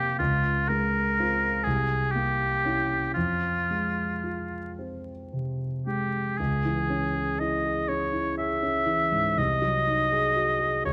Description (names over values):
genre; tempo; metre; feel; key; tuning
classical, romantic duo for oboe and grand piano; 36-42 BPM (dotted quarters); 6/8; rubato; F minor, C# minor from 6.4 s; A4 = 440 Hz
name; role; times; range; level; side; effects
warm oboe; melody; 0.0-10.9 s; F4 to E5; -28 LUFS; equal; none
dark grand piano; accompaniment; 0.0-10.9 s; C2 to G#4; -30 LUFS; equal; none
room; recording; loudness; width
moderate recital hall reverb, RT60 1.4 s; close, detailed microphones, vinyl crackle; -26 LUFS; mono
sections
0.0-6.4 A section; 6.4-10.9 B section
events
none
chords
0.2 Dbmaj7; 1.7 C7b9; 3.2 Fm; 6.4 C#m; 9.4 G#7/B#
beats
| 0.19 1.66 | 3.15 4.78 | 6.39 7.89 | 9.38 10.86